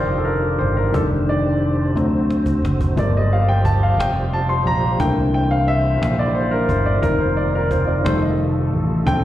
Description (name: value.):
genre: slow gospel.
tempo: 59 BPM (dotted quarters).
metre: 6/8.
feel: straight.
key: unclear.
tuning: A4 = 440 Hz.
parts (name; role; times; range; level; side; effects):
warm upright piano; accompaniment; 0.0-9.2 s; D3 to C6; -20 LUFS; left 2 dB; slapback echo.
tonewheel organ; sustained chords; 0.0-9.2 s; D3 to C5; -26 LUFS; right 2 dB; slow rotary speaker, chorus vibrato.
fingered electric bass; bass; 0.0-9.2 s; F1 to D2; -20 LUFS; equal; none.
cajon; drums; 0.3-9.2 s; none; -24 LUFS; equal; none.
room: light reverb.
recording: live gig heard through the venue's PA, recital hall reverb.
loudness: -16 LUFS.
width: side -13 dB against mid.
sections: 0.0-9.2 A section.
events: upright piano solo 0.0-9.2; drum fill 2.0-3.0.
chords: 0.0 Ebmaj9; 0.9 F13; 2.0 D7; 3.0 Gm9; 5.0 C13; 7.0 F7sus4; 8.1 F9.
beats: | 0.94 1.95 | 2.97 3.98 | 5.00 6.02 | 7.03 8.05 | 9.07.